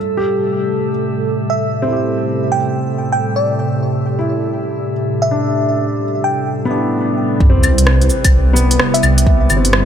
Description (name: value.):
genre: future garage.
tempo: 129 BPM.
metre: 4/4.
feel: swing 62% on 16ths.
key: A minor.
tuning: A4 = 440 Hz.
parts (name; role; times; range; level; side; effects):
warbly tape-like pad; sustained chords; 0.0-9.8 s; A2 to B4; -19 LUFS; right 1 dB; chorus, built-in reverb, sidechain pumping.
drifting glass-harmonics texture; texture; 0.0-9.8 s; G3 to A4; -27 LUFS; right 3 dB; chorus, built-in reverb.
warm upright piano; accompaniment; 0.2-9.8 s; B3 to G4; -21 LUFS; left 2 dB; sidechain pumping, ping-pong delay.
bell-like FM electric piano; melody; 1.5-9.6 s; D5 to G5; -21 LUFS; equal; chorus, phaser, tape echo.
swelling detuned saw bass; bass; 7.4-9.8 s; G1 to C2; -13 LUFS; equal; tube saturation, sidechain pumping.
electronic kick drum; drums; 7.4-9.4 s; none; -13 LUFS; equal; studio ambience.
sub drop; sound effects; 7.4-9.3 s; none; -21 LUFS; equal; none.
deep house drum kit; drums; 7.6-9.8 s; cabasa, claves, hi-hat, rim click; -17 LUFS; left 1 dB; studio ambience.
room: light reverb, digital ambience.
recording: none.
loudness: -13 LUFS.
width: side -9 dB against mid.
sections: 0.0-7.4 A section; 7.4-9.8 B section.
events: impact 7.4-9.3.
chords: 0.0 Am7; 7.4 Cmaj7.